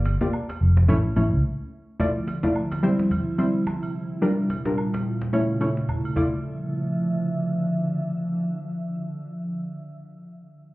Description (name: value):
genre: afrobeats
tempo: 108 BPM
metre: 4/4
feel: swing 58% on 16ths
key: D minor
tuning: A4 = 440 Hz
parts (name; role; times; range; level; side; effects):
- fingered electric bass; bass; 0.0-1.4 s; F1 to C#2; -18 LUFS; equal; none
- cajon; drums; 0.1-6.3 s; none; -31 LUFS; equal; none
- agogo bells and woodblock; percussion; 0.1-6.7 s; none; -39 LUFS; right 3 dB; none
- analog pluck; accompaniment; 0.2-10.1 s; G3 to D5; -24 LUFS; equal; chorus
- glassy FM pad; sustained chords; 2.1-9.4 s; Bb2 to E5; -27 LUFS; right 1 dB; ensemble chorus, built-in reverb
room: moderate plate reverb, RT60 1.7 s, small room ambience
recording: heard muffled through a wall, club reverb, EQ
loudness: -22 LUFS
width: side -20 dB against mid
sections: 0.0-2.0 A section; 2.0-6.4 B section; 6.4-8.7 C section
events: break 1.4-2.0; drum fill 5.3-6.4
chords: 0.0 Gm7; 0.9 A; 2.0 Dmadd9; 2.8 C; 4.2 Gm7; 5.3 A; 6.2 Dmadd9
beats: 0.33 0.89 1.44 | 2.00 2.55 3.11 3.67 | 4.22 4.78 5.33 5.89 | 6.44 7.00 7.55 8.11